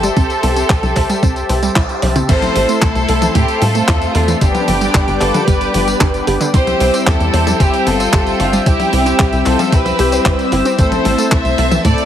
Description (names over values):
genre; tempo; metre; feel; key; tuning
italo disco; 113 BPM; 4/4; straight; C major; A4 = 439 Hz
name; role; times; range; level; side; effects
rich studio violin section; melody; 0.0-12.1 s; D4 to E5; -18 LUFS; right 1 dB; digital delay
lush unison pad; sustained chords; 0.0-12.1 s; C4 to E6; -20 LUFS; left 1 dB; chorus
analog pluck; arpeggios; 0.0-11.9 s; D3 to C5; -22 LUFS; right 3 dB; chorus, digital delay
tight sequencer bass; bass; 0.0-11.9 s; G1 to A2; -18 LUFS; equal; tube saturation
clean 12-bit digital drum machine; drums; 0.0-12.1 s; crash cymbal, handclaps, hi-hat, tambourine, toms; -21 LUFS; left 1 dB; studio ambience
electronic kick drum; drums; 0.2-12.0 s; none; -15 LUFS; equal; studio ambience
mellow synth brass; stabs; 2.3-12.1 s; G3 to E5; -20 LUFS; left 4 dB; chorus
room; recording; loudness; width
light reverb; heavily compressed radio sound; -11 LUFS; side -10 dB against mid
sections
0.0-2.3 A section; 2.3-12.1 B section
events
band accent 1.8; drum fill 2.0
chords
0.0 C6; 2.3 Am; 4.4 G; 6.5 C; 10.8 Am